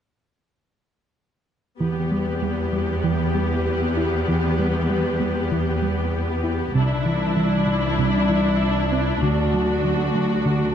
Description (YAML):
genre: cinematic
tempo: 97 BPM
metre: 4/4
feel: straight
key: E minor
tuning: A4 = 440 Hz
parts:
  - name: rich symphonic viola section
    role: accompaniment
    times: 1.8-10.7 s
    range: B3 to G4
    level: -24 LUFS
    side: left 2 dB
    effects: none
  - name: thumb-piano-like synth pluck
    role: arpeggios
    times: 1.8-10.6 s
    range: C3 to E4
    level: -25 LUFS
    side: right 1 dB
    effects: chorus, digital delay
  - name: rich symphonic cello section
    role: bass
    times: 1.8-10.7 s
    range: C2 to E2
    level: -23 LUFS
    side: equal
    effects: none
room: wet scoring stage reverb, RT60 2.1 s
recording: dark, warm production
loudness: -19 LUFS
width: side -9 dB against mid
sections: 1.8-10.7 A section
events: none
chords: 1.8 Em; 6.7 Cadd9; 9.2 D